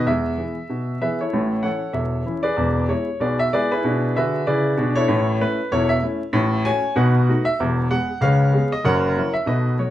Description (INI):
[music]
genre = jazz, stride piano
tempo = 191 BPM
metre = 4/4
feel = swing 58% on 8ths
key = A major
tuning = A4 = 440 Hz
[part]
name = warm baby grand piano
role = solo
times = 0.0-9.9 s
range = E1 to G#5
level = -18 LUFS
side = equal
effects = none
[sound]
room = wet studio reverb, RT60 0.5 s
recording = band playing live in one room, vinyl crackle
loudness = -18 LUFS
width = side -13 dB against mid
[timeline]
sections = 0.0-1.3 A section; 1.3-9.9 B section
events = none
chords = 0.1 E; 1.3 A; 2.6 E7; 3.8 E7/B; 5.1 A; 6.3 F#m/A; 7.0 B7; 7.6 E; 8.2 C#7; 8.8 F#7